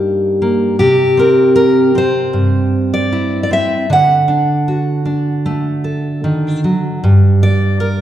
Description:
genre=folk, solo fingerstyle acoustic guitar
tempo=77 BPM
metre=4/4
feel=straight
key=unclear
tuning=A4 = 440 Hz
part: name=fingerpicked steel-string acoustic guitar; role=solo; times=0.0-8.0 s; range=G2 to F#5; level=-11 LUFS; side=equal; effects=none
room=wet recital hall reverb, RT60 1.5 s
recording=recorded in a church or concert hall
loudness=-11 LUFS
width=side -11 dB against mid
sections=0.0-7.0 A section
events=none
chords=0.0 Eb/G; 0.8 C; 3.9 D; 7.0 N.C.

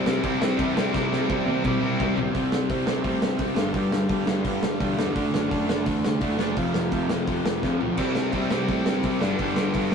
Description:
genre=punk rock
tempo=170 BPM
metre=4/4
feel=straight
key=unclear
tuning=A4 = 437 Hz
part: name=distorted electric guitar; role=riff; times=0.0-9.9 s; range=F2 to D4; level=-27 LUFS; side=left 6 dB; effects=distortion
part: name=sludgy distorted guitar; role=riff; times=0.0-9.9 s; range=F2 to D4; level=-27 LUFS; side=right 5 dB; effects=overdrive
part: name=tight distorted guitar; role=riff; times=0.0-2.2, 8.0-9.9 s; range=G2 to E4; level=-29 LUFS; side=equal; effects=distortion
part: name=fuzz picked electric bass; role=bass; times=0.1-9.9 s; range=E1 to C3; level=-34 LUFS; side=equal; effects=overdrive
part: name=loose indie drum kit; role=drums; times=0.1-9.9 s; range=crash cymbal, hi-hat, kick drum, snare drum, splash cymbal, toms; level=-28 LUFS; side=equal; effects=none
room=wet studio ambience, RT60 0.5 s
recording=rough rehearsal-room recording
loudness=-22 LUFS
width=side -6 dB against mid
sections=0.0-2.3 A section; 2.3-9.9 B section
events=drum fill 0.9-2.3, 7.6-8.0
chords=0.0 C; 2.3 C5; 3.6 G5; 5.2 D/F#; 6.6 F5; 8.0 C; 9.2 G

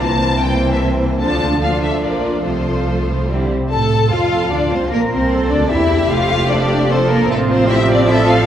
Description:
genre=quick classical-period movement for string orchestra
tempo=150 BPM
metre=3/4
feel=rubato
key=F major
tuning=A4 = 441 Hz
part: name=warm studio violin section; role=melody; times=0.0-8.5 s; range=A4 to A5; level=-21 LUFS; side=left 3 dB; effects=none
part: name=rich chamber violin section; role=second line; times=0.0-8.3 s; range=A3 to C5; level=-21 LUFS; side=left 2 dB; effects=none
part: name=warm symphonic viola section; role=accompaniment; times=0.0-8.5 s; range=E3 to A4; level=-19 LUFS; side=right 1 dB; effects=none
part: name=rich chamber cello section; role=bass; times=0.0-8.5 s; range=Bb2 to Bb4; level=-22 LUFS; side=right 2 dB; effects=none
part: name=rich chamber double bass section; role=bass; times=0.0-8.5 s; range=F1 to A2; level=-19 LUFS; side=right 2 dB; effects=none
room=wet church reverb, RT60 2.9 s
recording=recorded in a church or concert hall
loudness=-13 LUFS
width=side -10 dB against mid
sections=0.0-3.7 A section; 3.7-8.5 B section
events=none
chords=0.0 C7; 1.2 Dm; 2.0 Bb; 2.4 F/C; 3.3 C; 3.7 F; 4.9 C7/Bb; 6.1 F; 7.3 F/A

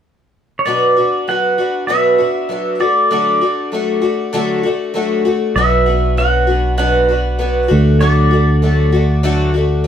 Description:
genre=folk rock and heartland rock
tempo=98 BPM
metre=4/4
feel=straight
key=unclear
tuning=A4 = 438 Hz
part: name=pedal steel guitar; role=melody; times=0.6-9.2 s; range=C#5 to F#5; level=-17 LUFS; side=equal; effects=none
part: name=picked twelve-string acoustic guitar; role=accompaniment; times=0.7-9.9 s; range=B2 to F#4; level=-16 LUFS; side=left 1 dB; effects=none
part: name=fingered electric bass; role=bass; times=5.6-9.9 s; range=B1 to D2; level=-14 LUFS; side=right 1 dB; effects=none
room=moderate studio reverb, RT60 0.6 s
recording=band playing live in one room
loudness=-12 LUFS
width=side -9 dB against mid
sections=0.7-9.9 A section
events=none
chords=0.0 N.C.; 0.7 Bm; 2.8 D; 5.6 Bm; 7.7 D

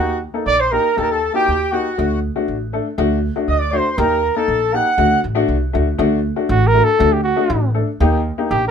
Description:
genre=klezmer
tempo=120 BPM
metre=2/4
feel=straight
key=D phrygian dominant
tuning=A4 = 440 Hz
part: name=mellow cornet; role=melody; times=0.0-8.7 s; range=F#4 to F#5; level=-17 LUFS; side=right 2 dB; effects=none
part: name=accordion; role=second line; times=0.0-5.2 s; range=F#4 to F#5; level=-24 LUFS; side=left 4 dB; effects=none
part: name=warm upright piano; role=accompaniment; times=0.0-8.6 s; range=A3 to Bb4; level=-21 LUFS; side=left 5 dB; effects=none
part: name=upright bass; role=bass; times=0.0-8.7 s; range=A1 to Eb2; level=-20 LUFS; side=right 1 dB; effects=none
room=moderate small room reverb, RT60 0.5 s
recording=minimal, uncompressed stereo recording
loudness=-15 LUFS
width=side -7 dB against mid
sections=0.0-6.0 A section; 6.0-8.7 B section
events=cornet solo 0.0-6.0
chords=0.0 Eb; 2.0 D; 4.0 Eb; 5.0 D; 8.0 Eb

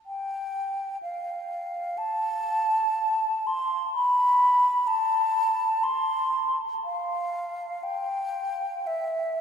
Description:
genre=classical, free, expressive piece for unaccompanied flute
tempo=50-64 BPM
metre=4/4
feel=rubato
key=unclear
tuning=A4 = 440 Hz
part: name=mellow hollow concert flute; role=solo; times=0.1-9.4 s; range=E5 to C6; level=-24 LUFS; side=equal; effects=none
room=wet cathedral reverb, RT60 5.0 s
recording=minimal, uncompressed stereo recording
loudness=-24 LUFS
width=side -7 dB against mid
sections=0.0-9.4 A section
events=none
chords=none

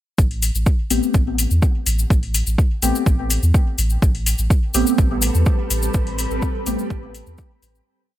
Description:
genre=dub techno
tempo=125 BPM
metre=4/4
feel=straight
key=A minor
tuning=A4 = 440 Hz
part: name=pure sine sub bass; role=bass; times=0.2-7.8 s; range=A1 to E2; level=-20 LUFS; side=equal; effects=sidechain pumping
part: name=electronic kick drum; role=drums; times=0.2-7.5 s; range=none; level=-17 LUFS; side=equal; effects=none
part: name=cabasa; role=percussion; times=0.2-7.8 s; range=none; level=-25 LUFS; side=left 5 dB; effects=none
part: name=electronic hi-hat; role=drums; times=0.3-7.7 s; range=none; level=-27 LUFS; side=left 3 dB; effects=overdrive
part: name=deep mellow chord stab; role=stabs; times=0.9-6.9 s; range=A3 to G4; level=-23 LUFS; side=equal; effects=chorus, phaser, sidechain pumping, dub echo
part: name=granular cloud pad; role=sustained chords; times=4.9-7.8 s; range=G3 to B4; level=-28 LUFS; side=equal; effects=built-in reverb, wide subtle chorus, sidechain pumping
room=little or no reverb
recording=bright 1980s-style digital production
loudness=-16 LUFS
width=side -13 dB against mid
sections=0.2-7.9 groove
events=fade-out 5.3-7.9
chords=0.2 Am9

